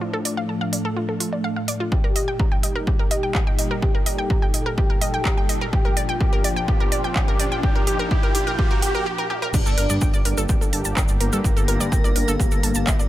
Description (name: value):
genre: melodic techno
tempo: 126 BPM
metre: 4/4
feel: straight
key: G minor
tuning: A4 = 440 Hz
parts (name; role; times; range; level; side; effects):
- expressive synth lead; melody; 0.0-13.1 s; A3 to G4; -28 LUFS; equal; ensemble chorus, sidechain pumping, tape echo
- sweeping resonant pad; sustained chords; 0.0-13.1 s; A2 to A4; -30 LUFS; left 1 dB; chorus, sidechain pumping
- wide unison pluck; arpeggios; 0.0-13.1 s; F4 to Bb5; -28 LUFS; equal; sidechain pumping, dub echo
- techno drum kit; drums; 0.3-13.0 s; crash cymbal, handclaps, hi-hat, toms; -28 LUFS; right 1 dB; high-pass filter on hats, high-pass filter on snare, high-pass filter on toms, high-pass filter on cymbals, high-pass filter on room
- electronic kick drum; drums; 1.9-13.0 s; none; -21 LUFS; equal; none
- riser; sound effects; 5.2-9.1 s; none; -33 LUFS; right 2 dB; none
- airy dreamy lead; second line; 9.5-13.1 s; Bb4 to D5; -32 LUFS; equal; chorus, phaser, sidechain pumping, dub echo
- dark detuned saw bass; bass; 9.5-13.1 s; G1 to G2; -25 LUFS; equal; sidechain pumping
- cabasa; percussion; 9.5-13.1 s; none; -30 LUFS; right 3 dB; none
room: little or no reverb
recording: none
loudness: -19 LUFS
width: side -14 dB against mid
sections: 0.0-9.5 A section; 9.5-13.1 B section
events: build-up 0.0-9.5; filter sweep on analog synth lead 0.0-9.5; filter sweep on analog synth pad 0.0-9.5; riser 5.2-9.1; break 9.1-9.5; drum fill 9.2-9.5; drop 9.5-13.1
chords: 0.0 Dm; 1.9 Eb; 5.7 Bb; 9.5 Gmadd9